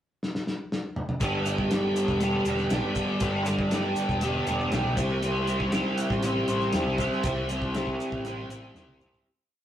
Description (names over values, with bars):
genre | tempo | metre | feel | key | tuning
psychedelic rock | 119 BPM | 4/4 | straight | unclear | A4 = 441 Hz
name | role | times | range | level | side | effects
cloth-damped thuddy drum kit | drums | 0.2-9.2 s | hi-hat, kick drum, snare drum, toms | -32 LUFS | equal | none
tonewheel organ | sustained chords | 1.2-9.2 s | G4 to A5 | -36 LUFS | right 4 dB | slow rotary speaker, overdrive, chorus vibrato
crunchy overdriven guitar | riff | 1.2-9.3 s | G2 to C5 | -26 LUFS | equal | rotary speaker
hollow-body short-scale picked electric bass | bass | 1.2-9.1 s | E1 to E2 | -34 LUFS | equal | none
maracas | percussion | 1.2-9.2 s | none | -48 LUFS | left 5 dB | none
room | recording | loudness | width
moderate stone room reverb, RT60 1.2 s | rough rehearsal-room recording | -24 LUFS | side -10 dB against mid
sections
0.0-1.2 pickup bar; 1.2-9.3 pre-chorus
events
drum fill 0.2-1.2, 8.8-9.3; fade-out 7.2-9.3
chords
0.0 N.C.; 1.2 G; 5.0 C